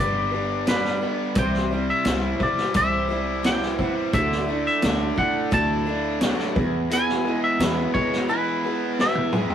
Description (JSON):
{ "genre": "folk rock and heartland rock", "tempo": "87 BPM", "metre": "4/4", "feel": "straight", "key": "unclear", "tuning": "A4 = 442 Hz", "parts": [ { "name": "twangy electric guitar", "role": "melody", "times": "0.0-9.5 s", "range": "B4 to A5", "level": "-25 LUFS", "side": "equal", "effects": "none" }, { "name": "picked acoustic archtop guitar", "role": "accompaniment", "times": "0.0-9.5 s", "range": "C3 to C5", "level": "-28 LUFS", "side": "left 2 dB", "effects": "none" }, { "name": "raw garage guitar", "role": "riff", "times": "0.0-9.5 s", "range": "E2 to G4", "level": "-27 LUFS", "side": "right 1 dB", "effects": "overdrive" }, { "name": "fingered electric bass", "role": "bass", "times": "0.0-7.9 s", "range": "G1 to E2", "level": "-29 LUFS", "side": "right 1 dB", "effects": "none" }, { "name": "vintage drum kit", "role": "drums", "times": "0.7-9.5 s", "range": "hi-hat, kick drum, snare drum, toms", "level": "-26 LUFS", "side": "equal", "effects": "none" } ], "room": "moderate small room reverb, RT60 0.5 s", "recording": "rough rehearsal-room recording", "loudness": "-20 LUFS", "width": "side -9 dB against mid", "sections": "0.0-9.5 A section", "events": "drum fill 9.0-9.5", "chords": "0.0 G; 1.4 C; 4.1 Dadd9; 6.6 E" }